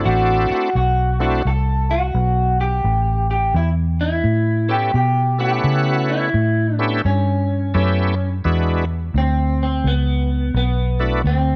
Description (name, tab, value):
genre	blues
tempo	86 BPM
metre	4/4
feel	swing 64% on 8ths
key	A mixolydian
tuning	A4 = 442 Hz
part	electric guitar through a small old amp	melody	0.0-11.6 s	B3 to A4	-24 LUFS	equal	lush chorus
part	bright tonewheel organ	accompaniment	0.0-11.2 s	G#3 to F#5	-25 LUFS	equal	slow rotary speaker, overdrive, chorus vibrato
part	vintage muted fingered electric bass	bass	0.0-11.6 s	A1 to C#3	-21 LUFS	equal	none
room	digital ambience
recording	none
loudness	-19 LUFS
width	mono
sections	0.0-11.6 A section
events	none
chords	0.0 D9; 2.8 A9; 8.4 E9